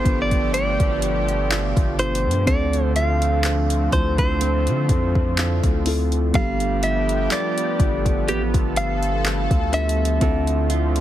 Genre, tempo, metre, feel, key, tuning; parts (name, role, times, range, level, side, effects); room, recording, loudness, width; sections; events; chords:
contemporary R&B; 62 BPM; 4/4; swing 54% on 16ths; A4 = 435 Hz
direct-recorded clean electric guitar; melody; 0.0-11.0 s; G4 to F5; -24 LUFS; equal; tape echo
muted felt-like synth keys; accompaniment; 0.0-11.0 s; B2 to B4; -27 LUFS; left 2 dB; chorus
lush unison pad; sustained chords; 0.0-11.0 s; B2 to A4; -28 LUFS; equal; chorus
nylon-string guitar; arpeggios; 0.0-11.0 s; D3 to F4; -31 LUFS; right 10 dB; tape echo
long sustained 808-style bass; bass; 0.1-11.0 s; G1 to D3; -23 LUFS; equal
smooth R&B drum kit; drums; 0.1-11.0 s; handclaps, hi-hat, kick drum; -22 LUFS; equal; overdrive
little or no reverb; heavily compressed radio sound, multiband compression; -18 LUFS; side -12 dB against mid
0.0-11.0 A section
0.0 G9; 2.5 Dm7; 6.3 G9; 10.2 Dm7